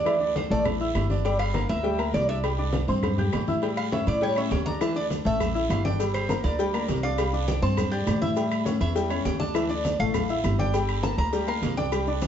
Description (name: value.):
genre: latin, salsa.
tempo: 202 BPM.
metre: 4/4.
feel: straight.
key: D minor.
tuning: A4 = 442 Hz.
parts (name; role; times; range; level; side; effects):
Cuban tres; melody; 0.0-12.2 s; C5 to Bb5; -30 LUFS; right 1 dB; none.
clear concert grand piano; accompaniment; 0.0-12.3 s; E3 to G6; -28 LUFS; left 2 dB; none.
upright bass; bass; 0.0-12.3 s; G1 to A2; -27 LUFS; equal; none.
agogo bells and timbales; percussion; 0.1-12.3 s; none; -35 LUFS; right 6 dB; none.
claves; percussion; 0.1-12.1 s; none; -43 LUFS; left 5 dB; none.
congas; percussion; 0.1-12.3 s; none; -32 LUFS; equal; none.
cowbell; percussion; 0.1-12.3 s; none; -35 LUFS; left 5 dB; none.
guiro; percussion; 0.1-12.3 s; none; -44 LUFS; right 5 dB; none.
maracas; percussion; 4.8-12.3 s; none; -48 LUFS; left 5 dB; none.
room: moderate studio reverb, RT60 0.7 s.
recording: heard from further back in the room, nothing above 7.8 kHz.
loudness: -23 LUFS.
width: side -9 dB against mid.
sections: 0.0-12.3 A section.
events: Cuban tres solo 0.0-12.3.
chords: 0.1 Dsus2; 1.3 Gm; 2.4 Csus2; 3.6 A7; 4.8 Dsus2; 6.0 Gm; 7.2 Csus2; 8.4 A7; 9.6 Dmadd9; 10.7 Gm.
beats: | 0.07 0.36 0.66 0.95 | 1.25 1.55 1.84 2.14 | 2.44 2.73 3.03 3.33 | 3.62 3.92 4.22 4.51 | 4.81 5.11 5.41 5.70 | 6.00 6.29 6.59 6.89 | 7.18 7.48 7.78 8.07 | 8.37 8.66 8.96 9.26 | 9.55 9.85 10.14 10.44 | 10.74 11.03 11.33 11.62 | 11.92 12.22.